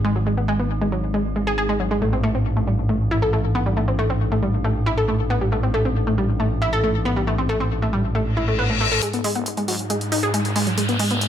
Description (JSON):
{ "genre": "driving peak-time techno", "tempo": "137 BPM", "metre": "4/4", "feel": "straight", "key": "G# phrygian", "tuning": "A4 = 440 Hz", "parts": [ { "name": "analog pluck", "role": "riff", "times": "0.0-11.1 s", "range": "F#3 to A4", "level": "-22 LUFS", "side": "equal", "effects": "chorus, overdrive, ping-pong delay" }, { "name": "growling FM bass", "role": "bass", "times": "0.0-11.2 s", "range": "F#1 to G#2", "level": "-24 LUFS", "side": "equal", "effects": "high-pass filter" }, { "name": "metallic inharmonic drone", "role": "drone", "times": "0.0-11.3 s", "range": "G#2", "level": "-25 LUFS", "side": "equal", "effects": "chorus, built-in reverb" }, { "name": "reverse cymbal and riser", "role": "sound effects", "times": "8.3-11.3 s", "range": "none", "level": "-26 LUFS", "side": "left 4 dB", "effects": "none" }, { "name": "electronic hi-hat", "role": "drums", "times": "9.0-11.3 s", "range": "none", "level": "-27 LUFS", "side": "right 1 dB", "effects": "overdrive, low-pass filter on cymbals, low-pass filter on hats" } ], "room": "moderate stone room reverb, RT60 0.9 s", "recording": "none", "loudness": "-19 LUFS", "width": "side -10 dB against mid", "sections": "0.0-9.0 A section; 9.0-11.3 B section", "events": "reverse cymbal 8.3-9.0; build-up 9.0-11.3; riser 9.0-11.3; filter sweep on synth arpeggio sound 9.0-11.3", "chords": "0.0 G#m; 2.0 Am; 9.0 G#m" }